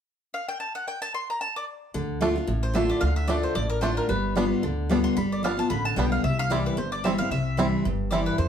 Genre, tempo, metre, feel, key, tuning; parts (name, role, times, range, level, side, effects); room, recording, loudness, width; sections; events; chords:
bluegrass; 224 BPM; 4/4; swing 56% on 8ths; D minor; A4 = 440 Hz
mandolin; melody; 0.3-8.5 s; Bb4 to C6; -30 LUFS; left 1 dB; plate reverb
picked steel-string acoustic guitar; accompaniment; 1.9-8.5 s; F2 to F4; -26 LUFS; left 1 dB
upright bass; bass; 1.9-8.5 s; G1 to F2; -28 LUFS; equal
bluegrass banjo; melody; 2.2-8.2 s; G3 to E4; -30 LUFS; right 4 dB; plate reverb
wet studio ambience, RT60 0.5 s; heard from further back in the room; -23 LUFS; side -8 dB against mid
0.0-1.9 A section; 1.9-8.5 B section
0.0 N.C.; 1.9 Dm; 4.1 G7; 6.2 C